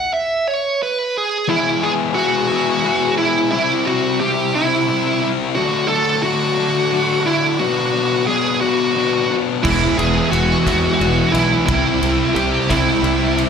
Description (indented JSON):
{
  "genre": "quiet-loud alternative rock",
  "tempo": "59 BPM (dotted quarters)",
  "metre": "6/8",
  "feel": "straight",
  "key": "E mixolydian",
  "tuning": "A4 = 440 Hz",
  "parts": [
    { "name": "bluesy overdriven lead guitar", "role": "melody", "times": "0.0-13.4 s", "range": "E4 to F#5", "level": "-18 LUFS", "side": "right 2 dB", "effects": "distortion, slapback echo" },
    { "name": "phased string machine", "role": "sustained chords", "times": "1.5-13.5 s", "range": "G3 to E6", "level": "-30 LUFS", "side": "right 2 dB", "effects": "ensemble chorus, phaser" },
    { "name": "sludgy distorted guitar", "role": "riff", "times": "1.5-13.5 s", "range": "B2 to G#4", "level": "-20 LUFS", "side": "left 8 dB", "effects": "overdrive, slapback echo" },
    { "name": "distorted electric guitar", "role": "riff", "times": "9.6-13.5 s", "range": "C3 to E4", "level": "-24 LUFS", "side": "equal", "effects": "overdrive" },
    { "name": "sludgy distorted guitar", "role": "riff", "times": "9.6-13.5 s", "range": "C3 to E4", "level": "-23 LUFS", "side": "right 13 dB", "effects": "overdrive, slapback echo" },
    { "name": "fuzz fingered electric bass", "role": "bass", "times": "9.6-13.4 s", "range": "E1 to E2", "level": "-21 LUFS", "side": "right 1 dB", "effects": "overdrive" },
    { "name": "big rock drum kit", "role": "drums", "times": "9.6-13.5 s", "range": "crash cymbal, kick drum, ride cymbal, snare drum", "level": "-25 LUFS", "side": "equal", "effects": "none" }
  ],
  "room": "little or no reverb",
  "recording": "live gig heard through the venue's PA, club reverb",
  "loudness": "-15 LUFS",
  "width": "side -6 dB against mid",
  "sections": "0.0-1.5 A section; 1.5-13.5 B section",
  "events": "lead electric guitar solo 0.0-1.5; stop 0.0-1.5",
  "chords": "0.0 N.C.; 1.5 E; 3.5 C; 5.6 D; 7.6 Bm; 9.6 E; 11.7 C"
}